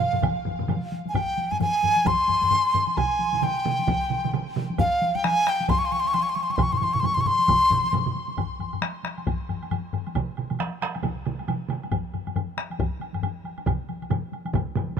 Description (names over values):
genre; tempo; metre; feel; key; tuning
japanese traditional, taiko drum ensemble; 134 BPM; 4/4; swing 60% on 16ths; C miyako bushi; A4 = 441 Hz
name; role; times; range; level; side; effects
large dizi; melody; 0.0-7.9 s; F5 to Db6; -22 LUFS; equal; none
solo taiko drums; percussion; 0.0-15.0 s; none; -30 LUFS; left 7 dB; none
taiko ensemble; percussion; 0.0-15.0 s; none; -32 LUFS; left 1 dB; none
taiko ensemble; percussion; 0.1-15.0 s; none; -29 LUFS; right 7 dB; none
taiko ensemble; percussion; 0.2-14.7 s; none; -31 LUFS; equal; none
woodblock; percussion; 0.2-14.9 s; none; -37 LUFS; right 5 dB; none
room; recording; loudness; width
moderate huge ambient reverb, RT60 4.8 s; none; -22 LUFS; side -7 dB against mid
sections
0.0-8.4 A section; 8.4-15.0 B section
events
speeding up 0.0-15.0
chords
none